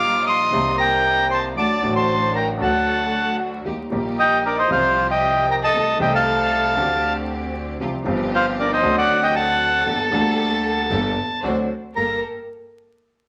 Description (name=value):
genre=tango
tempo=116 BPM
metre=4/4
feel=rubato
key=G minor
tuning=A4 = 440 Hz
part: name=bandoneon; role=melody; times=0.0-12.2 s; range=Bb4 to F6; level=-21 LUFS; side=equal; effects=none
part: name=warm violin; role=second line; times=0.0-12.2 s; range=D4 to F5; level=-31 LUFS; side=equal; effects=none
part: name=warm grand piano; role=accompaniment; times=0.0-12.2 s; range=G1 to A4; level=-27 LUFS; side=equal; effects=none
part: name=rich studio string section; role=stabs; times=0.0-12.2 s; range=G3 to C5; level=-34 LUFS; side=equal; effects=none
part: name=upright bass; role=bass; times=0.0-12.2 s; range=G1 to Eb2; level=-35 LUFS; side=equal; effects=none
room=moderate large studio reverb, RT60 0.8 s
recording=vinyl crackle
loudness=-20 LUFS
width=mono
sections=0.0-12.0 A section; 12.0-13.3 B section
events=none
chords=0.0 Ebadd9; 0.5 Cm7; 1.6 D; 3.7 Eb; 4.7 Csus4; 5.7 Adim/C; 6.8 D7sus4; 7.8 Csus4; 8.8 D7; 9.9 Gmadd9; 11.4 D7; 12.0 Gmadd9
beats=0.02 0.54 1.05 | 1.57 2.09 2.61 3.13 | 3.65 4.17 4.70 5.21 | 5.73 6.25 6.77 7.28 | 7.80 8.32 8.83 9.35 | 9.87 10.39 10.91 11.44 | 11.96